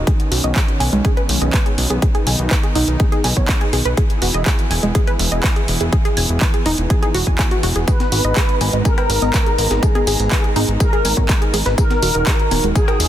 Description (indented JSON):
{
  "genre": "progressive house",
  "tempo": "123 BPM",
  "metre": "4/4",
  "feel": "straight",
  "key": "G# minor",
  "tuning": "A4 = 440 Hz",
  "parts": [
    { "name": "warm analog pad", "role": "sustained chords", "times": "0.0-13.1 s", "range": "D#3 to A#5", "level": "-26 LUFS", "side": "right 1 dB", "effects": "chorus, sidechain pumping" },
    { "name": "fat analog bass", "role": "bass", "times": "0.0-13.1 s", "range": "D#1 to B1", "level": "-19 LUFS", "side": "equal", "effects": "sidechain pumping" },
    { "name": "wide unison pluck", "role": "arpeggios", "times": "0.1-12.9 s", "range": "G#3 to G#5", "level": "-23 LUFS", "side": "right 1 dB", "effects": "sidechain pumping, ping-pong delay" },
    { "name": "big-room dance drum kit", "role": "drums", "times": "0.1-13.1 s", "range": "handclaps, hi-hat", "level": "-22 LUFS", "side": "right 1 dB", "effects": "none" },
    { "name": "electronic kick drum", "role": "drums", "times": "0.1-12.9 s", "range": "none", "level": "-17 LUFS", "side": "equal", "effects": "none" },
    { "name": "expressive synth lead", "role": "melody", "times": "7.9-13.1 s", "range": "G#4 to B4", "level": "-21 LUFS", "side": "equal", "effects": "ensemble chorus, vintage 12-bit sampler grit, sidechain pumping, tape echo" },
    { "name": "breakbeat sampler-style drum kit", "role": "drums", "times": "7.9-13.1 s", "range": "hi-hat, snare drum, tambourine", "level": "-30 LUFS", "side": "left 5 dB", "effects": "sidechain pumping on perc, high-pass filter on perc, high-pass filter on snare, sidechain pumping on hats, high-pass filter on hats" },
    { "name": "congas and cowbell", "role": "percussion", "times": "8.0-13.0 s", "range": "none", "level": "-27 LUFS", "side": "left 7 dB", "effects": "sidechain pumping on perc" }
  ],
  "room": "digital ambience",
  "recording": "dense, heavily limited modern master",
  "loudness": "-14 LUFS",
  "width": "side -12 dB against mid",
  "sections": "0.0-13.1 A section",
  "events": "none",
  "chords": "0.1 Badd9; 4.0 E; 7.9 G#madd9; 11.8 D#m"
}